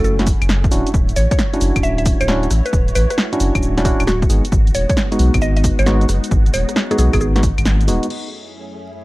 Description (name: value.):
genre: UK garage, two-step garage.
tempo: 134 BPM.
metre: 4/4.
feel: swing 67% on 16ths.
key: unclear.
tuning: A4 = 440 Hz.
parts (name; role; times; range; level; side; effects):
mallet-like synth pluck; melody; 0.0-7.3 s; F#4 to E5; -23 LUFS; right 1 dB; chorus, digital delay.
soft string machine; sustained chords; 0.1-9.0 s; F#2 to C#5; -30 LUFS; left 1 dB; phaser, ensemble chorus, sidechain pumping.
mellow tine electric piano; stabs; 0.0-8.1 s; G#3 to G#4; -21 LUFS; equal; overdrive, digital delay.
saturated sub bass; bass; 0.0-8.0 s; D1 to B1; -16 LUFS; equal; tube saturation.
punchy analog drum machine; drums; 0.0-8.2 s; claves, crash cymbal, hi-hat, rim click, shaker, snare drum; -22 LUFS; equal; none.
electronic kick drum; drums; 0.3-7.6 s; none; -18 LUFS; equal; none.
room: digital ambience.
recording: vinyl crackle.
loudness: -13 LUFS.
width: side -20 dB against mid.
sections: 0.0-8.1 A section.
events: kick drops out 7.7-8.1; band accent 7.7.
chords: 0.0 F#m7; 0.7 Dmaj9; 4.3 G#m7; 8.1 F#m7.